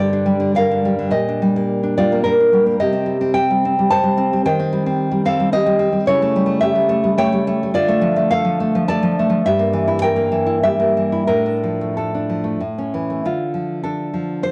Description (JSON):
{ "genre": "romantic piece for solo classical guitar", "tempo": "83-112 BPM", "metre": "3/4", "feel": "rubato", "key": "D minor from 6.1 s", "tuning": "A4 = 440 Hz", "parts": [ { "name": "nylon-string guitar", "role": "solo", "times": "0.0-14.5 s", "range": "G2 to A5", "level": "-18 LUFS", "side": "equal", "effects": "cassette tape" } ], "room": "light reverb, small room ambience", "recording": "home recording on cassette", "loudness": "-18 LUFS", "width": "mono", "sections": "0.0-13.2 A section; 13.2-14.5 B section", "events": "none", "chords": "0.0 Gm; 1.1 Gm/Bb; 2.8 Cm; 4.4 Cm/Eb; 6.1 A7/C#; 7.7 Dm; 9.4 Edim/G; 11.3 Dm/A; 12.6 A; 13.2 Dm" }